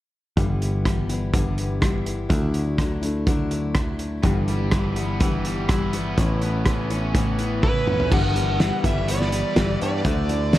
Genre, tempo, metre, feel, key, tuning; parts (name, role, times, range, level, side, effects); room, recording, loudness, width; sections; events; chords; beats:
folk rock and heartland rock; 124 BPM; 4/4; straight; G major; A4 = 440 Hz
picked steel-string acoustic guitar; accompaniment; 0.4-10.6 s; G2 to E4; -26 LUFS; left 3 dB
picked electric bass; bass; 0.4-10.6 s; G1 to G2; -25 LUFS; equal
loose indie drum kit; drums; 0.4-10.6 s; crash cymbal, hi-hat, kick drum, rim click, snare drum, toms; -23 LUFS; right 1 dB
overdriven electric guitar; riff; 4.2-10.6 s; G2 to E4; -30 LUFS; right 1 dB
smooth overdriven lead guitar; melody; 7.6-10.6 s; B4 to F#5; -26 LUFS; right 1 dB
small room ambience; dark, warm production; -20 LUFS; side -15 dB against mid
0.4-8.1 A section; 8.1-10.6 B section
drum fill 7.6-8.1
0.4 G6; 2.3 Dadd9; 4.2 G6; 6.2 Aadd9; 8.1 G6; 10.1 Dadd9
| 0.38 0.86 1.34 1.82 | 2.31 2.79 3.28 3.76 | 4.24 4.73 5.21 5.70 | 6.18 6.67 7.15 7.63 | 8.12 8.60 9.09 9.57 | 10.05 10.54